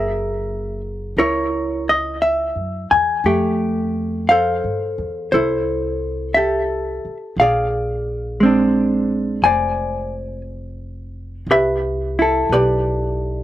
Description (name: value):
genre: jazz ballad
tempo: 58 BPM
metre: 4/4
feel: swing 68% on 8ths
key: unclear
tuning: A4 = 442 Hz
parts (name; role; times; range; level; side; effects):
- vintage hollow-body jazz guitar; accompaniment; 0.0-13.4 s; F#3 to G#5; -17 LUFS; equal; none
- upright bass; bass; 0.0-13.4 s; F1 to G2; -27 LUFS; equal; none
room: little or no reverb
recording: recorded outdoors, with no room sound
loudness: -17 LUFS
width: side -13 dB against mid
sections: 0.0-13.4 A section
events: none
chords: 0.0 F#9; 3.2 Fmaj9; 7.4 Bb9; 11.5 Cmaj13